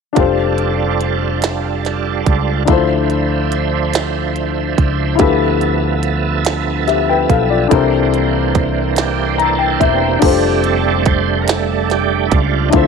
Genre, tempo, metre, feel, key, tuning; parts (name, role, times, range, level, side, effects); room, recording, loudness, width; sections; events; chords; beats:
slow gospel; 48 BPM (dotted quarters); 6/8; straight; F major; A4 = 440 Hz
warm upright piano; accompaniment; 0.1-12.9 s; C3 to Bb5; -17 LUFS; left 11 dB
bright tonewheel organ; sustained chords; 0.1-12.9 s; E3 to E5; -18 LUFS; right 12 dB; fast rotary speaker, overdrive, chorus vibrato
fingered electric bass; bass; 0.2-12.9 s; E1 to D2; -19 LUFS; equal
minimal click drum kit; drums; 0.2-12.9 s; crash cymbal, hi-hat, kick drum, snare drum; -17 LUFS; right 4 dB
light reverb; 1960s-style stereo with parts hard left and right; -13 LUFS; side -5 dB against mid
0.2-10.2 A section; 10.2-12.9 B section
upright piano fill 9.0-10.2; tonewheel organ solo 10.2-12.9
0.2 F69; 2.7 Dm9; 5.2 G13/D; 7.7 C13; 10.2 F69
| 0.16 1.42 | 2.68 3.94 | 5.20 6.46 | 7.71 8.97 | 10.23 11.48 | 12.74